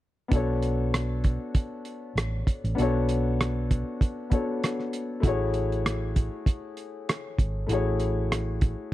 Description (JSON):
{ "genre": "lush 1970s-style soul", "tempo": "98 BPM", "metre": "4/4", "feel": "swing 54% on 16ths", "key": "B dorian", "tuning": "A4 = 435 Hz", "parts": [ { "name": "warm grand piano", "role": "accompaniment", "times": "0.3-8.9 s", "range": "A3 to C#5", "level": "-30 LUFS", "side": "left 3 dB", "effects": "none" }, { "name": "hollow-body short-scale fingered electric bass", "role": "bass", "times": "0.3-8.7 s", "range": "G#1 to B1", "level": "-28 LUFS", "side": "right 1 dB", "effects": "none" }, { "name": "cloth-damped thuddy drum kit", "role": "drums", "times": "0.3-8.8 s", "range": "hi-hat, kick drum, rim click", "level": "-25 LUFS", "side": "right 1 dB", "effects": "none" } ], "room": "small room ambience", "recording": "dry, close 1970s-style studio recording", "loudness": "-25 LUFS", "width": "side -15 dB against mid", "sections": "0.3-8.9 A section", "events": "none", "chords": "0.3 Bm9; 5.2 F#m9", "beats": "| 0.32 0.93 1.54 2.16 | 2.77 3.39 4.00 4.61 | 5.23 5.84 6.46 7.07 | 7.69 8.30 8.92" }